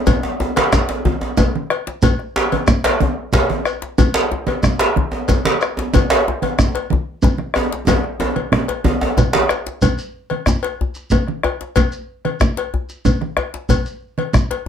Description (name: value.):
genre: west african traditional, West African drum ensemble.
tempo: 123 BPM (dotted quarters).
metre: 12/8.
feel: straight.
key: none.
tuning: none.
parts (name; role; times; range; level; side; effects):
bombo; percussion; 0.1-14.5 s; none; -19 LUFS; left 1 dB; none.
congas; percussion; 0.1-14.5 s; none; -20 LUFS; right 4 dB; none.
cowbell; percussion; 0.1-14.7 s; none; -24 LUFS; left 8 dB; none.
djembe; percussion; 0.1-14.7 s; none; -22 LUFS; left 3 dB; none.
djembe; percussion; 0.1-9.5 s; none; -19 LUFS; right 2 dB; none.
shekere; percussion; 0.1-14.5 s; none; -25 LUFS; right 2 dB; none.
room: moderate small room ambience, RT60 0.5 s.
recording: none.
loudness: -16 LUFS.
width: side -8 dB against mid.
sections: 0.0-9.8 A section; 9.8-14.7 B section.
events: drum fill 7.9-9.8.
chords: none.